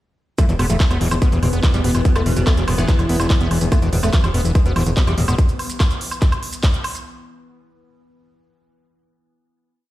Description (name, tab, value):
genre	psychedelic trance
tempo	144 BPM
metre	4/4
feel	straight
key	unclear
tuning	A4 = 441 Hz
part	oud	melody	0.4-5.3 s	B2 to A3	-25 LUFS	equal	phaser, sidechain pumping, dub echo
part	evolving wavetable pad	sustained chords	0.9-5.4 s	E3 to B3	-28 LUFS	left 2 dB	chorus, built-in reverb, sidechain pumping
part	overdriven acid bass	riff	0.4-5.4 s	E3 to B3	-25 LUFS	equal	distortion, auto-pan, sidechain pumping, dub echo
part	big-room dance drum kit	drums	0.4-7.0 s	handclaps, hi-hat, woodblock	-26 LUFS	right 1 dB	overdrive
part	electronic kick drum	drums	0.4-6.7 s	none	-15 LUFS	equal	none
part	maracas	percussion	0.4-7.0 s	none	-35 LUFS	right 3 dB	none
part	fat analog bass	bass	0.5-5.4 s	E1	-19 LUFS	equal	none
part	metallic wobble bass	second line	2.7-3.3 s	B3 to E4	-38 LUFS	left 4 dB	none
room	little or no reverb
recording	played on a big sound system in a bare room, stone room reverb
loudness	-15 LUFS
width	side -16 dB against mid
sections	0.4-7.1 drop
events	drop 0.4-7.1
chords	0.4 E5